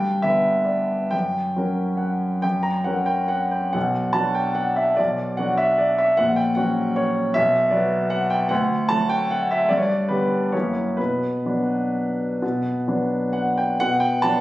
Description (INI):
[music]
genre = classical, piano waltz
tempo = 119-167 BPM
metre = 3/4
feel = rubato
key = B minor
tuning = A4 = 440 Hz
[part]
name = warm concert grand piano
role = solo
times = 0.0-14.4 s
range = A#1 to A#5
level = -19 LUFS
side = equal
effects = none
[sound]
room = moderate stone room reverb, RT60 1.0 s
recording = recorded on a phone in the room, club reverb, compression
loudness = -19 LUFS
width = side -16 dB against mid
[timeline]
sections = 0.0-13.8 A section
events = none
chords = 0.0 G; 1.1 F#; 3.8 Bm; 6.2 F#/A#; 7.4 Bm; 8.5 D; 9.7 G; 10.5 F#7; 11.0 Bm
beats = 0.23 0.66 | 1.13 1.57 2.00 | 2.44 2.87 3.32 | 3.75 4.16 4.58 | 4.99 5.39 5.80 | 6.19 6.58 6.98 | 7.36 7.73 8.12 | 8.51 8.90 9.31 | 9.71 10.10 10.54 | 10.98 11.45 11.95 | 12.42 12.88 13.36 | 13.81 14.24